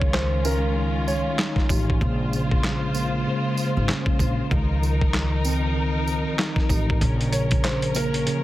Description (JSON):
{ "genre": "hip hop, boom-bap hip-hop", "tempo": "96 BPM", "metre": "4/4", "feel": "swing 60% on 16ths", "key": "Bb minor", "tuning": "A4 = 440 Hz", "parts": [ { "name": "warm upright piano", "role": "melody", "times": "0.0-1.5, 7.3-8.4 s", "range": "Bb4 to Db5", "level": "-28 LUFS", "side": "right 2 dB", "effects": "high-pass filter, low-pass filter, ping-pong delay" }, { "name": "mellow tine electric piano", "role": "accompaniment", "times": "0.0-8.4 s", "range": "Db3 to Eb4", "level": "-27 LUFS", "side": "equal", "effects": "medium stereo tremolo, cassette tape, high-pass filter, low-pass filter" }, { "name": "warm symphonic string section", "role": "stabs", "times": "0.0-8.4 s", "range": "F3 to C5", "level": "-29 LUFS", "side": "left 2 dB", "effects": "high-pass filter, low-pass filter, ping-pong delay" }, { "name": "upright bass", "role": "bass", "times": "0.0-8.2 s", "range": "Ab1 to Db2", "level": "-25 LUFS", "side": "equal", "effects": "none" }, { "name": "boom bap sampler-style drum kit", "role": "drums", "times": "0.0-8.4 s", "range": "handclaps, hi-hat, kick drum, snare drum", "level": "-23 LUFS", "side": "equal", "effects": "none" }, { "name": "tambourine", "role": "percussion", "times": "0.4-8.1 s", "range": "none", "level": "-34 LUFS", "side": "right 5 dB", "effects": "none" } ], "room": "little or no reverb", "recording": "heavily compressed radio sound", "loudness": "-20 LUFS", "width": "side -15 dB against mid", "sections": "0.0-8.4 A section", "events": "break 0.0-7.0", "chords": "0.0 Dbadd9; 2.0 Bbm9; 4.5 Dbmaj9; 7.0 Bbm" }